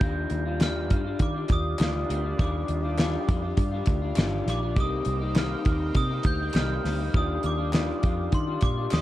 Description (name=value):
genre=indie pop, bedroom pop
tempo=101 BPM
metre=4/4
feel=straight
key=Eb major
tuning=A4 = 438 Hz
part: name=glockenspiel with hard plastic mallets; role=melody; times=0.0-9.0 s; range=C6 to G6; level=-34 LUFS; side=right 2 dB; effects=analog chorus, plate reverb
part: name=electric guitar through a small old amp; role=accompaniment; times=0.0-9.0 s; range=C3 to F4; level=-31 LUFS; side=left 3 dB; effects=analog chorus, warbly pitch drift, plate reverb
part: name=phased analog pad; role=sustained chords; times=0.0-9.0 s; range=Eb3 to G5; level=-38 LUFS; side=equal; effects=phaser, chorus, plate reverb
part: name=vintage muted fingered electric bass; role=bass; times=0.0-9.0 s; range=G1 to Eb3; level=-29 LUFS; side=equal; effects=none
part: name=damped 70s drum kit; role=drums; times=0.0-9.0 s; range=hi-hat, kick drum, snare drum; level=-25 LUFS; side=equal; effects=none
part: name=group handclap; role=percussion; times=0.6-9.0 s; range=none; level=-43 LUFS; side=right 4 dB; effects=none
room=light reverb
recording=dark, warm production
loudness=-23 LUFS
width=side -14 dB against mid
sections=0.0-9.0 A section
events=none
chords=0.0 Ebmaj9; 4.8 Cm7; 7.1 Ebmaj9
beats=| 0.01 0.60 1.20 1.79 | 2.39 2.98 3.58 4.17 | 4.77 5.36 5.96 6.55 | 7.14 7.74 8.33 8.93